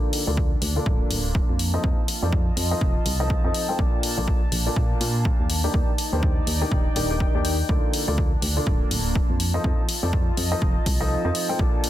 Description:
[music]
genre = piano house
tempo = 123 BPM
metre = 4/4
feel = swing 59% on 16ths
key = Bb major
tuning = A4 = 440 Hz
[part]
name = clear upright piano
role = riff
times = 0.0-11.9 s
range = Bb2 to G5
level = -28 LUFS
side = left 1 dB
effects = sidechain pumping, low-pass filter, dub echo
[part]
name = warbly tape-like pad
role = texture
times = 0.0-11.9 s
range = Bb3 to A5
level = -32 LUFS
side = equal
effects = chorus, built-in reverb, sidechain pumping
[part]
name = electronic hi-hat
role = drums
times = 0.1-11.9 s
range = none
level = -28 LUFS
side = left 2 dB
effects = none
[part]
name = solid FM bass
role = bass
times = 0.3-11.7 s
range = D1 to Bb2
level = -26 LUFS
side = equal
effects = sidechain pumping
[part]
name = electronic kick drum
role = drums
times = 0.4-11.7 s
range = none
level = -23 LUFS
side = equal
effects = none
[sound]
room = little or no reverb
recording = dense, heavily limited modern master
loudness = -20 LUFS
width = side -13 dB against mid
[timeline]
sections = 0.0-11.9 A section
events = kick drops out 11.1-11.6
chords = 0.0 Bbmaj7/D; 1.6 F7; 3.8 Bbmaj7; 5.5 Ebmaj7; 7.7 Bbmaj7/D; 9.4 F7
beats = 0.37 0.86 1.35 | 1.84 2.33 2.81 3.30 | 3.79 4.28 4.76 5.25 | 5.74 6.23 6.72 7.20 | 7.69 8.18 8.67 9.15 | 9.64 10.13 10.62 11.11 | 11.59

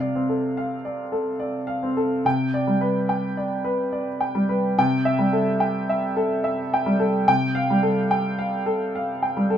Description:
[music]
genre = neoclassical minimalist piano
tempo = 72 BPM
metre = 3/4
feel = rubato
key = C major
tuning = A4 = 440 Hz
[part]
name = clear baby grand piano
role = solo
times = 0.0-9.6 s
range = C3 to G5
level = -20 LUFS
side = equal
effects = none
[sound]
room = light reverb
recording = minimal, uncompressed stereo recording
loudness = -20 LUFS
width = side -9 dB against mid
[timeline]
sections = 0.0-9.6 A section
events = none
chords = 0.0 Dm7/C; 2.2 G/C; 4.8 C6; 7.3 Fadd9/C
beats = 0.57 1.41 | 2.25 3.08 3.92 | 4.75 5.59 6.43 | 7.26 8.10 8.94

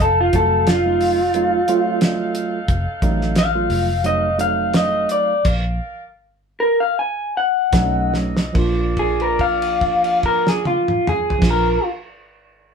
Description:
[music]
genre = straight-eighth soul blues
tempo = 71-89 BPM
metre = 4/4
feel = swing 54% on 16ths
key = unclear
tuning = A4 = 440 Hz
[part]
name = electric guitar through a small old amp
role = melody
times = 0.0-11.9 s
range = F4 to Ab5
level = -17 LUFS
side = left 1 dB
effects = none
[part]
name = mellow horn section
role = sustained chords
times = 0.0-11.8 s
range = Eb4 to F5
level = -29 LUFS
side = equal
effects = none
[part]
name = vintage muted fingered electric bass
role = bass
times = 0.0-11.8 s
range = F1 to B1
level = -23 LUFS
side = equal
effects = none
[part]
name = cloth-damped thuddy drum kit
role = drums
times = 0.0-11.6 s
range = crash cymbal, hi-hat, kick drum, snare drum, toms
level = -21 LUFS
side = equal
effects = none
[part]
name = tine electric piano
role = accompaniment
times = 0.3-11.8 s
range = F3 to Eb5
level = -24 LUFS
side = right 4 dB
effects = overdrive
[sound]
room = moderate studio reverb, RT60 0.6 s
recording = band playing live in one room, faint mains hum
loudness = -16 LUFS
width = side -6 dB against mid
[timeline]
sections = 0.0-8.5 A section; 8.5-11.9 B section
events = tine electric piano fill 1.7-2.7; slowing down 2.7-8.5; stop 5.4-7.7; drum fill 8.1-8.5; held note 8.5-11.4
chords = 0.0 F7b9; 5.4 Bb; 7.7 B7; 8.5 Bb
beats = | 0.00 0.67 1.34 2.01 | 2.69 3.36 4.04 4.74 | 5.45 6.18 6.93 7.72 | 8.54 9.38 10.23 11.07

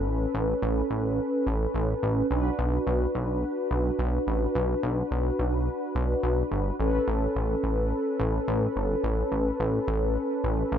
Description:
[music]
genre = synth-pop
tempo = 107 BPM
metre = 4/4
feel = straight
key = unclear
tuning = A4 = 439 Hz
[part]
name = mellow synth brass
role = accompaniment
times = 0.0-10.8 s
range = C#4 to B4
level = -27 LUFS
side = equal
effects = chorus
[part]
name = chorused synth bass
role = bass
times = 0.0-10.8 s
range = G1 to B1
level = -27 LUFS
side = equal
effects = none
[sound]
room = light reverb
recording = none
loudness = -24 LUFS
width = side -9 dB against mid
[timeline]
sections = 0.0-10.8 A section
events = none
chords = 0.0 Aadd9; 2.3 Bm; 6.8 Aadd9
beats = | 0.07 0.62 1.19 1.75 | 2.31 2.87 3.43 3.99 | 4.55 5.11 5.67 6.23 | 6.79 7.35 7.92 8.48 | 9.04 9.60 10.16 10.72

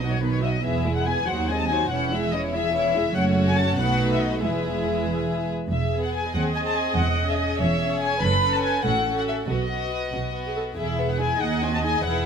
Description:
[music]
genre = quick classical-period movement for string orchestra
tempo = 95 BPM (dotted quarters)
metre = 6/8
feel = straight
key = E major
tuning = A4 = 445 Hz
[part]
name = dark studio violin section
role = melody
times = 0.0-12.3 s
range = B4 to B5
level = -26 LUFS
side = left 4 dB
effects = none
[part]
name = warm chamber violin section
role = second line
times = 0.0-12.2 s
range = B3 to E5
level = -29 LUFS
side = left 3 dB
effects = none
[part]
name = warm chamber viola section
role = accompaniment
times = 0.0-12.3 s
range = D#3 to D#5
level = -28 LUFS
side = right 3 dB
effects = none
[part]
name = dark chamber cello section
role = bass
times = 0.0-12.3 s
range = D#2 to B2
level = -28 LUFS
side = right 2 dB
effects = none
[part]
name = dark chamber double bass section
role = bass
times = 0.0-12.3 s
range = E1 to D#2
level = -29 LUFS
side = right 4 dB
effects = none
[sound]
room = moderate scoring stage reverb, RT60 1.7 s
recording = close, detailed microphones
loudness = -21 LUFS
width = side -7 dB against mid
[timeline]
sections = 0.0-5.7 A section; 5.7-12.3 A section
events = none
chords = 0.0 B; 0.6 E; 1.3 G#7/D#; 1.9 C#m/E; 3.2 F#m; 3.8 B7; 4.4 E; 6.4 G#/D#; 7.0 C#m/E; 8.2 F#m; 8.9 F#m/A; 9.5 B; 10.8 E; 11.4 G#7/D#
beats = 0.00 | 0.64 1.28 | 1.91 2.53 | 3.16 3.79 | 4.43 5.08 | 5.72 6.35 | 6.98 7.60 | 8.22 8.85 | 9.49 10.14 | 10.78 11.41 | 12.05

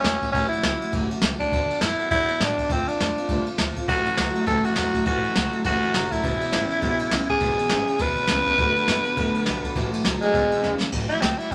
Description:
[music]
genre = rockabilly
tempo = 204 BPM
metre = 4/4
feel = swing 60% on 8ths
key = A major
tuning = A4 = 440 Hz
[part]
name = raspy tenor saxophone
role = melody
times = 0.0-11.5 s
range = G#3 to B4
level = -25 LUFS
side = equal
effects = none
[part]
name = picked steel-string acoustic guitar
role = accompaniment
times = 0.0-11.5 s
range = A2 to A4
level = -34 LUFS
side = equal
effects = none
[part]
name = upright bass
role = bass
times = 0.0-11.5 s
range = E1 to A2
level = -36 LUFS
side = equal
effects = none
[part]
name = jazz brush drum kit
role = drums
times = 0.0-11.5 s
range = crash cymbal, kick drum, ride cymbal, snare drum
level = -28 LUFS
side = equal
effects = none
[part]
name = electric guitar through a small old amp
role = riff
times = 3.9-10.9 s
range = E2 to B3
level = -30 LUFS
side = equal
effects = none
[sound]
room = moderate club ambience, RT60 0.5 s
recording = none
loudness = -23 LUFS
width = mono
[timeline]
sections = 0.0-10.9 A section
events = drum fill 10.6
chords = 0.0 A6; 1.5 D6; 2.7 Dm7; 3.9 A6; 6.2 E6; 8.6 D6; 9.8 A6; 10.3 E6; 10.9 A6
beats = 0.04 | 0.34 0.63 0.93 1.22 | 1.51 1.81 2.10 2.40 | 2.69 2.99 3.29 3.58 | 3.87 4.17 4.46 4.76 | 5.05 5.35 5.64 5.94 | 6.23 6.52 6.82 7.11 | 7.41 7.70 7.99 8.29 | 8.58 8.87 9.16 9.46 | 9.75 10.04 10.34 10.63 | 10.92 11.21 11.51

